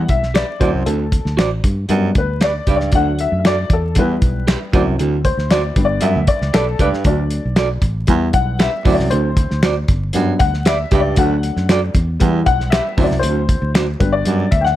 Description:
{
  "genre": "uptempo 1960s-style soul",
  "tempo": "116 BPM",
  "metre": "4/4",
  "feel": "straight",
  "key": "D major",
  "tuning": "A4 = 440 Hz",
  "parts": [
    { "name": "warm upright piano", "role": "accompaniment", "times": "0.0-14.8 s", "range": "F#3 to G5", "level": "-20 LUFS", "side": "left 4 dB", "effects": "none" },
    { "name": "breathy baritone saxophone", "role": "riff", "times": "0.0-14.5 s", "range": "D2 to G2", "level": "-21 LUFS", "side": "right 5 dB", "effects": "none" },
    { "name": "fingered electric bass", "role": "bass", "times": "0.0-14.7 s", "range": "G1 to E3", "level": "-20 LUFS", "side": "equal", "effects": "none" },
    { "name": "cloth-damped thuddy drum kit", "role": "drums", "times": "0.1-14.7 s", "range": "hi-hat, kick drum, snare drum", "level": "-17 LUFS", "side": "equal", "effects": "none" },
    { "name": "electric guitar through a small old amp", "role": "stabs", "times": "0.3-13.9 s", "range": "D4 to E5", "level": "-22 LUFS", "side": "right 4 dB", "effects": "none" },
    { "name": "finger snap", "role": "percussion", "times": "0.4-13.9 s", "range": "none", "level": "-28 LUFS", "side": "left 5 dB", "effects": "none" }
  ],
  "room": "little or no reverb",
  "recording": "vinyl crackle",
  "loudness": "-14 LUFS",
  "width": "side -13 dB against mid",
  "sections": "0.0-14.8 A section",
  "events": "upright piano solo 0.0-14.8",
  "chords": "0.0 Em; 0.6 D7; 1.6 G; 2.9 D; 4.0 Em; 4.7 D7; 5.8 G; 7.1 D; 8.1 Em; 8.9 D7; 9.9 G; 11.2 D; 12.2 Em; 13.0 D7; 14.0 G"
}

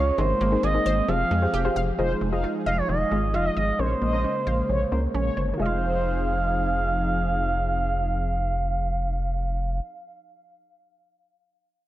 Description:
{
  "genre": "pop",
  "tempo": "133 BPM",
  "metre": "4/4",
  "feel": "straight",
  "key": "F minor",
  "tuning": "A4 = 439 Hz",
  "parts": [
    { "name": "expressive portamento lead", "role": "melody", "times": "0.0-9.8 s", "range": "C5 to F5", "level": "-27 LUFS", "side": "right 2 dB", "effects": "chorus, analog delay" },
    { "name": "soft round pluck", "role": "accompaniment", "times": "0.0-9.8 s", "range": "Db4 to Eb5", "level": "-32 LUFS", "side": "left 3 dB", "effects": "chorus" },
    { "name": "brassy analog pad", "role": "sustained chords", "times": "0.0-9.8 s", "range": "Db3 to Ab4", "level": "-30 LUFS", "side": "equal", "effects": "chorus" },
    { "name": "analog pluck", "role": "arpeggios", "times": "0.0-9.9 s", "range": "C3 to F5", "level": "-33 LUFS", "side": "equal", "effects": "chorus, analog delay" },
    { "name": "rubbery square bass", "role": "bass", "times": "0.0-9.8 s", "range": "F1 to F2", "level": "-26 LUFS", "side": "equal", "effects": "none" },
    { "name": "mellow synth brass", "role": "second line", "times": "2.0-6.9 s", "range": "C5 to F5", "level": "-31 LUFS", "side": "left 1 dB", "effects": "chorus, analog delay" }
  ],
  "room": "light reverb",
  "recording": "dark, warm production",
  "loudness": "-22 LUFS",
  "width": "side -14 dB against mid",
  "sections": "0.0-2.0 A section; 2.0-5.6 B section; 5.6-9.2 C section",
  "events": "none",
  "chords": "0.2 Abadd9; 1.1 Fmadd9; 2.0 Fm7; 3.8 Bbmadd9; 5.6 Fm7"
}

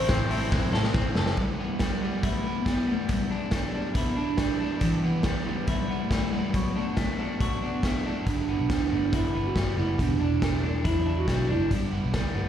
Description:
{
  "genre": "jangly indie pop",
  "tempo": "139 BPM",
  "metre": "4/4",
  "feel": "straight",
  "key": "G major",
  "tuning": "A4 = 440 Hz",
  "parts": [
    { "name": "hollow clarinet-like synth lead", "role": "melody", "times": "0.0-12.3 s", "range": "E3 to C5", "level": "-29 LUFS", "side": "right 1 dB", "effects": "chorus, phaser, slapback echo, tape echo" },
    { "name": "clear trumpet", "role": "second line", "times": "0.0-1.0 s", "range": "C4", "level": "-39 LUFS", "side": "right 2 dB", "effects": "slapback echo, tape echo" },
    { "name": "crunchy overdriven guitar", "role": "accompaniment", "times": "0.0-12.5 s", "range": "E2 to A4", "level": "-36 LUFS", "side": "right 7 dB", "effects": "slapback echo" },
    { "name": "electric guitar through a small old amp", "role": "arpeggios", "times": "0.0-12.5 s", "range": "E2 to A4", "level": "-32 LUFS", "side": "left 3 dB", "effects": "slapback echo, tape echo" },
    { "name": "vintage muted picked electric bass", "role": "bass", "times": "0.0-1.3, 8.3-12.5 s", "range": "E1 to A2", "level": "-28 LUFS", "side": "equal", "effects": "none" },
    { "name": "raw garage drum kit", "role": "drums", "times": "0.1-12.2 s", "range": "hi-hat, kick drum, snare drum", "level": "-28 LUFS", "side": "equal", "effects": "none" }
  ],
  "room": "light reverb, small room ambience",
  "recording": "live gig heard through the venue's PA, club reverb",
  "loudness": "-24 LUFS",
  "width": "side -10 dB against mid",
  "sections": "0.0-1.4 A section; 1.4-12.5 B section",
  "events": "drum fill 0.5-1.4",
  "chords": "0.0 Am; 1.4 G6; 3.1 Em7; 4.8 G6; 6.5 Bm7; 8.3 G6; 10.0 Em7; 11.7 G6"
}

